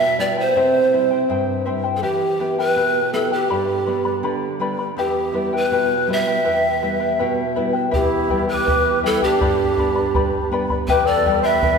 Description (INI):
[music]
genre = andean folk, Andean ensemble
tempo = 81 BPM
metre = 2/4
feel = straight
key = E minor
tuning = A4 = 438 Hz
[part]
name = breathy mellow polished pan flute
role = melody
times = 0.0-11.8 s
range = G4 to E5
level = -19 LUFS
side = right 1 dB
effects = none
[part]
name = charango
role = accompaniment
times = 0.0-11.8 s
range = E4 to B5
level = -23 LUFS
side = left 5 dB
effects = none
[part]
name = nylon-string guitar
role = accompaniment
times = 0.0-11.8 s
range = E2 to G4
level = -26 LUFS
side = right 2 dB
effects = none
[part]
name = breathy bright large quena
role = second line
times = 7.9-11.8 s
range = D4 to C5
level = -25 LUFS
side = right 2 dB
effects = none
[part]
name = bombo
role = percussion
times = 7.9-11.8 s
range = none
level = -25 LUFS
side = equal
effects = none
[sound]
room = wet church reverb, RT60 2.9 s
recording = recorded in a church or concert hall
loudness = -17 LUFS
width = side -5 dB against mid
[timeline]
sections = 0.0-7.9 A section; 7.9-11.8 A section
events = none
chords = 0.0 Em; 0.6 C; 2.0 Em; 3.5 G; 5.0 Em; 9.4 G; 10.9 Em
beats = | 0.56 1.30 | 2.04 2.77 | 3.51 4.25 | 4.99 5.72 | 6.46 7.20 | 7.93 8.67 | 9.41 10.15 | 10.88 11.62